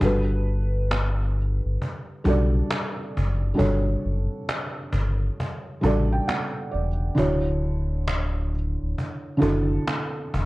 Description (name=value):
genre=lo-fi hip hop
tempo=67 BPM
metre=4/4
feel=swing 65% on 16ths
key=unclear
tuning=A4 = 440 Hz
part: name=felt-muted upright piano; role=accompaniment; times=0.0-10.5 s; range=D3 to A5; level=-26 LUFS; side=right 1 dB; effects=cassette tape
part: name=sub bass with octave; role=bass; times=0.0-10.5 s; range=D1 to B1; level=-24 LUFS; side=equal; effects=none
part: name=cajon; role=drums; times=0.0-10.5 s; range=none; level=-30 LUFS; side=equal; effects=none
room=little or no reverb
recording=cassette tape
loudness=-22 LUFS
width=side -19 dB against mid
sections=0.0-10.5 A section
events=none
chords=0.0 Gmaj7; 7.2 Dmaj9